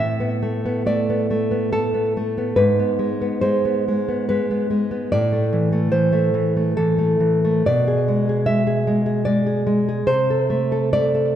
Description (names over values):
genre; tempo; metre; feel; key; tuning
romantic piece for solo classical guitar; 72 BPM; 3/4; uneven beats, rubato; A minor; A4 = 440 Hz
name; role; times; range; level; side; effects
nylon-string guitar; solo; 0.0-11.4 s; G#2 to E5; -17 LUFS; equal; tape echo
room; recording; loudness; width
wet recital hall reverb, RT60 1.4 s; none; -17 LUFS; side -10 dB against mid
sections
0.0-11.4 A section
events
none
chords
0.0 Asus24; 2.6 G#m; 5.1 Am; 7.6 E7/B; 10.1 Am/C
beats
0.86 1.72 | 2.57 3.43 4.28 | 5.11 5.93 6.75 | 7.65 8.46 9.27 | 10.10 10.95